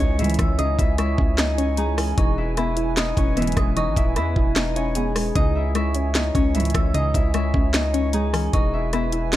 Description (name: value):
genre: hip hop, trap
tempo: 151 BPM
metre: 4/4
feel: half-time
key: C# minor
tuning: A4 = 440 Hz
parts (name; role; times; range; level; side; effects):
- concert harp; melody; 0.0-9.4 s; G#3 to E5; -26 LUFS; left 3 dB; ping-pong delay
- dark detuned synth bell; second line; 0.0-9.4 s; G#5 to E6; -33 LUFS; right 3 dB; chorus, ping-pong delay
- warbly dusty pluck; accompaniment; 0.0-9.4 s; C#3 to E4; -28 LUFS; left 2 dB; chorus
- hollow soft pad; sustained chords; 0.0-9.4 s; E4 to G#5; -33 LUFS; right 6 dB; chorus
- distorted 808-style bass; bass; 0.0-9.4 s; D#1 to E2; -24 LUFS; equal; distortion
- warm studio string section; stabs; 0.2-0.6, 3.4-3.7, 6.5-6.9 s; B1 to E3; -29 LUFS; right 3 dB; ping-pong delay
- trap drum kit; drums; 0.2-9.4 s; finger snaps, hi-hat, kick drum, rim click, snare drum; -22 LUFS; equal; none
room: digital ambience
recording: none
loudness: -19 LUFS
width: side -14 dB against mid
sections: 0.0-9.4 A section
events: none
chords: 0.0 C#m; 2.2 E; 5.4 C#m; 8.5 E